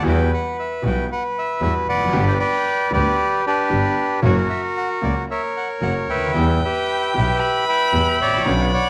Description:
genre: tango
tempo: 115 BPM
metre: 4/4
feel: rubato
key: unclear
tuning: A4 = 436 Hz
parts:
  - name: bandoneon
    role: melody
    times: 0.0-8.9 s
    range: D4 to B5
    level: -22 LUFS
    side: equal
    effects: none
  - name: bright grand piano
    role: accompaniment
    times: 0.0-8.7 s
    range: G1 to G4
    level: -28 LUFS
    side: equal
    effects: none
  - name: rich double bass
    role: bass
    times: 0.0-8.7 s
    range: E#1 to E2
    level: -24 LUFS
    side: equal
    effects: none
  - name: bright symphonic string section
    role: stabs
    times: 0.1-8.7 s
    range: G3 to B4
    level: -35 LUFS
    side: equal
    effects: none
  - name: warm violin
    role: second line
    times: 6.3-8.9 s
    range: G5 to B5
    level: -26 LUFS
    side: equal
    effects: none
room: moderate echo chamber reverb, RT60 1.3 s, studio reverb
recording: vinyl crackle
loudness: -20 LUFS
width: mono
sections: 0.0-8.9 A section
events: none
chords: 0.1 Emadd9; 2.1 G; 4.2 F#; 6.3 Em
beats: | 0.06 0.58 1.10 1.62 | 2.14 2.66 3.18 3.70 | 4.23 4.76 5.29 5.81 | 6.34 6.87 7.40 7.93 | 8.45

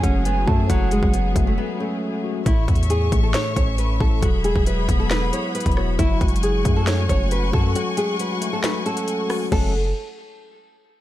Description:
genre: hip hop, trap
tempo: 136 BPM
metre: 4/4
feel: half-time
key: F# minor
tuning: A4 = 437 Hz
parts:
  - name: nylon-string guitar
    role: melody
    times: 0.0-9.7 s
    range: F#3 to C#5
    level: -26 LUFS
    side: equal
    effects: digital delay
  - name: hollow clarinet-like synth lead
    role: second line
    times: 0.0-1.5 s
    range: F#5 to A5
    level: -29 LUFS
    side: right 6 dB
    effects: chorus, digital delay
  - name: mellow tine electric piano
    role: accompaniment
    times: 0.0-9.7 s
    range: A2 to F#4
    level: -27 LUFS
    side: moving between left 8 dB and left 1 dB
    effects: auto-pan
  - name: clear symphonic string section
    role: sustained chords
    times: 0.0-9.7 s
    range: F#3 to C#6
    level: -30 LUFS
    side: left 2 dB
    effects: none
  - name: hard-hitting 808-style bass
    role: bass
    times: 0.0-9.9 s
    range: E1 to F#2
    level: -21 LUFS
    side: equal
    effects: none
  - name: trap drum kit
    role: drums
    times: 0.0-9.6 s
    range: crash cymbal, hi-hat, kick drum, rim click, snare drum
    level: -22 LUFS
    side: equal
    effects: none
room: little or no reverb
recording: dark, warm production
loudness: -18 LUFS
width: side -14 dB against mid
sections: 0.0-2.5 A section; 2.5-9.5 B section; 9.5-11.0 C section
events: break 1.6-2.5, 7.8-9.5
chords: 0.0 F#madd9; 2.5 A; 4.2 Eadd9; 6.0 F#madd9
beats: 0.26 | 0.70 1.14 1.58 2.02 | 2.46 2.90 3.34 3.78 | 4.22 4.67 5.11 5.55 | 5.99 6.43 6.87 7.31 | 7.75 8.20 8.64 9.08 | 9.52

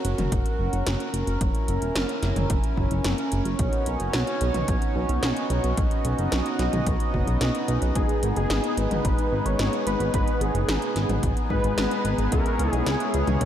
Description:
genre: synthwave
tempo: 110 BPM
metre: 4/4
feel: straight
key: unclear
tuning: A4 = 438 Hz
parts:
  - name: chorused pulse-width pad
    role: sustained chords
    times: 0.0-13.5 s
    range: B3 to D#5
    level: -28 LUFS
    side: right 1 dB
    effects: sidechain pumping
  - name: chorused synth bass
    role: bass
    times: 0.0-13.5 s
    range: E1 to C#2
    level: -26 LUFS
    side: equal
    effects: tube saturation
  - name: 80s electronic pad drums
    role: drums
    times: 0.0-13.5 s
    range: hi-hat, snare drum, toms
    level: -31 LUFS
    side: equal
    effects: gated reverb on snare and toms
  - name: electronic kick drum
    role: drums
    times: 0.3-13.5 s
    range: none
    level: -26 LUFS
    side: equal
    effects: none
  - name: wide unison lead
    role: melody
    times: 8.0-13.5 s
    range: C#4 to C#5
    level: -29 LUFS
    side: equal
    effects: analog delay
  - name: mellow synth brass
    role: stabs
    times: 8.0-13.5 s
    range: G#3 to B4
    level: -31 LUFS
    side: left 4 dB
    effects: chorus, tape echo
room: moderate huge ambient reverb, RT60 8.3 s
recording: dreamy mix soaked in reverb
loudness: -22 LUFS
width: side -10 dB against mid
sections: 0.0-13.5 A section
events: none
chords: 0.0 F#; 3.6 Badd9; 8.0 G#m; 12.3 C#m7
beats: 0.32 0.86 | 1.41 1.96 2.50 3.05 | 3.59 4.14 4.68 5.23 | 5.77 6.32 6.87 7.41 | 7.96 8.50 9.05 9.59 | 10.14 10.68 11.23 11.77 | 12.32 12.87 13.41

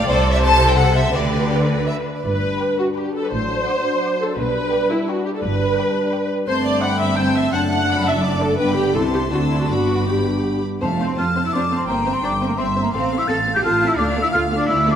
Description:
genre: quick classical-period movement for symphony orchestra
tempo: 170 BPM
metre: 3/4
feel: rubato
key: G major, F major from 10.8 s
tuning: A4 = 440 Hz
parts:
  - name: rich studio violin section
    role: melody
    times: 0.0-14.9 s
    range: C5 to F#6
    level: -25 LUFS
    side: left 3 dB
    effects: none
  - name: rich studio viola section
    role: accompaniment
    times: 0.0-14.9 s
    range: A3 to G5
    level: -22 LUFS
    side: right 1 dB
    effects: none
  - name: clear studio violin section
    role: second line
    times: 0.1-15.0 s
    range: G4 to D6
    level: -28 LUFS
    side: left 2 dB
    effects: none
  - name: bright studio cello section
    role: bass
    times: 0.1-15.0 s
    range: F#2 to A4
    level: -24 LUFS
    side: right 2 dB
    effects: none
  - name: clear studio double bass section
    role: bass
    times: 0.1-15.0 s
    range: F#1 to F2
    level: -24 LUFS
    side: right 2 dB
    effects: none
  - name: dark French horn section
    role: sustained chords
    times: 2.3-10.6 s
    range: F#3 to E4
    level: -23 LUFS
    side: left 3 dB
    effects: none
  - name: mellow hollow silver concert flute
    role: second line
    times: 10.8-15.0 s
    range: A5 to A6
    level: -20 LUFS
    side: left 2 dB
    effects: none
  - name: timpani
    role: percussion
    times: 10.8-11.3 s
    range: F2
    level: -33 LUFS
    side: left 2 dB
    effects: none
room: wet scoring stage reverb, RT60 1.8 s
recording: none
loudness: -17 LUFS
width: side -8 dB against mid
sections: 0.0-2.3 A section; 2.3-10.8 B section; 10.8-15.0 C section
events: none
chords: 0.1 Am/C; 1.1 G/D; 2.3 G; 3.3 D7/A; 4.4 G/B; 5.4 G; 6.5 Am7/G; 7.5 D/F#; 8.6 G; 8.9 C; 9.3 D7; 9.7 G; 10.8 F; 11.9 C7/G; 12.9 F/A; 14.0 Dm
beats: | 0.07 0.42 0.77 | 1.14 1.51 1.88 | 2.26 2.61 2.97 | 3.33 3.68 4.03 | 4.38 4.74 5.09 | 5.44 5.79 6.13 | 6.48 6.82 7.17 | 7.53 7.88 8.24 | 8.59 8.95 9.31 | 9.69 10.07 10.44 | 10.81 11.18 11.53 | 11.88 12.23 12.59 | 12.94 13.29 13.63 | 13.98 14.33 14.68

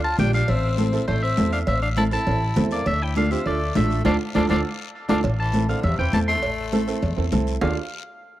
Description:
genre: latin, cumbia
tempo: 202 BPM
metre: 4/4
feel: straight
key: unclear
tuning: A4 = 440 Hz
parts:
  - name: twangy electric guitar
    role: melody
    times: 0.0-7.8 s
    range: A4 to C6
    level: -27 LUFS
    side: equal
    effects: spring reverb
  - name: growling tenor saxophone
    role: second line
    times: 0.0-7.8 s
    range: C3 to F4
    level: -30 LUFS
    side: left 6 dB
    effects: none
  - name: upright bass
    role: bass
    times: 0.0-7.8 s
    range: A1 to E2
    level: -24 LUFS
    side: equal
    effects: none
  - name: bright upright piano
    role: accompaniment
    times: 0.2-7.8 s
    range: C4 to C5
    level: -28 LUFS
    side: right 8 dB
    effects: none
  - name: congas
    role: percussion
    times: 0.2-7.7 s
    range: none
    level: -25 LUFS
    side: left 2 dB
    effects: none
  - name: cowbell and timbales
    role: percussion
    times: 0.2-7.7 s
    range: none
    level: -32 LUFS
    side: right 5 dB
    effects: none
  - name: guiro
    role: percussion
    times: 0.2-7.7 s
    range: none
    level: -41 LUFS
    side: left 11 dB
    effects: none
room: little or no reverb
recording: dry, close 1970s-style studio recording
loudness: -20 LUFS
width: side -14 dB against mid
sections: 0.0-5.2 A section; 5.2-7.6 B section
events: drum fill 4.1-5.2; band accent 4.1-5.2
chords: 0.5 Am; 2.9 Dm; 5.2 Am; 7.6 Dm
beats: 0.19 | 0.48 0.78 1.08 1.38 | 1.67 1.97 2.27 2.57 | 2.86 3.16 3.46 3.75 | 4.05 4.35 4.65 4.95 | 5.24 5.54 5.84 6.13 | 6.43 6.73 7.03 7.32 | 7.62

